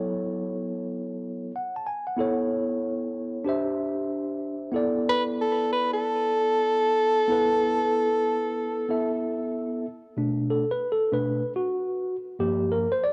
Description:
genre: hip hop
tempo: 94 BPM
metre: 4/4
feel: swing 64% on 16ths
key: B minor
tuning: A4 = 438 Hz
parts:
  - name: mellow tine electric piano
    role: accompaniment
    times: 0.0-13.1 s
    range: G2 to A5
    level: -29 LUFS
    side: equal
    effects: cassette tape
  - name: warm soprano saxophone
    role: melody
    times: 5.1-9.2 s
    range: A4 to B4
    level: -25 LUFS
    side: equal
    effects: cassette tape, tape echo
room: moderate lush hall reverb, RT60 2.8 s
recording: home recording on cassette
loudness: -26 LUFS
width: mono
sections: 0.0-9.9 A section; 9.9-13.1 B section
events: tine electric piano solo 9.9-13.1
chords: 0.0 F#m7; 2.2 B9sus4; 3.5 Cadd9; 4.7 Bm7; 12.4 Gm7

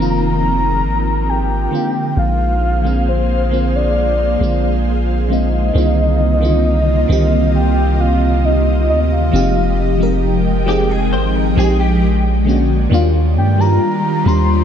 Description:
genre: R&B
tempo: 67 BPM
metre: 4/4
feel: straight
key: unclear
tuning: A4 = 441 Hz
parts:
  - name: soft octave-layered synth lead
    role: melody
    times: 0.0-14.6 s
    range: C5 to C6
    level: -20 LUFS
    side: left 1 dB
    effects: chorus, tremolo, ping-pong delay
  - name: FM electric piano with soft pad layer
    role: accompaniment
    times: 0.0-14.6 s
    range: D3 to Bb4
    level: -19 LUFS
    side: equal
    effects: chorus, phaser
  - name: ethereal airy pad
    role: sustained chords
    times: 0.0-14.6 s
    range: C3 to G5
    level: -20 LUFS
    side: equal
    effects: ensemble chorus, built-in reverb
  - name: long sustained 808-style bass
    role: bass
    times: 0.0-14.6 s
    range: F1 to G2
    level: -16 LUFS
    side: equal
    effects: none
  - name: direct-recorded clean electric guitar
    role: arpeggios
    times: 10.7-12.2 s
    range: G4 to C5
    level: -26 LUFS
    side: left 6 dB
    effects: ensemble chorus, ping-pong delay
room: moderate plate reverb, RT60 2.9 s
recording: dreamy mix soaked in reverb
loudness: -13 LUFS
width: side -8 dB against mid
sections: 0.0-5.8 A section; 5.8-14.6 B section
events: none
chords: 0.0 F7sus4; 1.7 Bb9; 5.8 Cm11; 9.3 Fm9; 12.0 Bb7alt; 12.9 Ebmaj9

